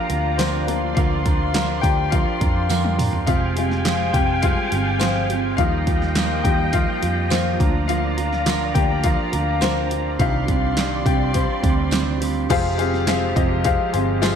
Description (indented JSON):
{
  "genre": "piano-driven pop",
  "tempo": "104 BPM",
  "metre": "4/4",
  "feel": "straight",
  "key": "unclear",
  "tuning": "A4 = 440 Hz",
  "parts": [
    { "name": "clear upright piano", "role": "accompaniment", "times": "0.0-14.4 s", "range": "C3 to G5", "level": "-23 LUFS", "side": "left 10 dB", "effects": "none" },
    { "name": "clear studio string section", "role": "sustained chords", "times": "0.0-14.4 s", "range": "F3 to C6", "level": "-29 LUFS", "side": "right 2 dB", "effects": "none" },
    { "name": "fingerpicked steel-string acoustic guitar", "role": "riff", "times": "0.0-14.4 s", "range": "C3 to Bb4", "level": "-25 LUFS", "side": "right 12 dB", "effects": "none" },
    { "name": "vintage muted picked electric bass", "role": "bass", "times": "0.1-14.4 s", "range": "F1 to F2", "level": "-24 LUFS", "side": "equal", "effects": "none" },
    { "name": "pop drum kit", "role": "drums", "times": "0.1-14.4 s", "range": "crash cymbal, handclaps, hi-hat, kick drum, snare drum, toms", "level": "-23 LUFS", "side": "equal", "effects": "none" },
    { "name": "tambourine", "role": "percussion", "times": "0.4-14.4 s", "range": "none", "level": "-35 LUFS", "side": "right 13 dB", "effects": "none" }
  ],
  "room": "moderate echo chamber reverb, RT60 1.2 s",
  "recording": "1960s-style stereo with parts hard left and right",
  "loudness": "-18 LUFS",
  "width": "side -8 dB against mid",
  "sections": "0.0-12.5 A section; 12.5-14.4 A section",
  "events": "upright piano solo 0.0-12.5; drum fill 2.7-3.3",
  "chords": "0.0 Bb/D; 3.3 Fmadd9; 5.6 Ebadd9; 7.6 Bb/D; 10.2 Cmadd9; 12.5 Fmadd9"
}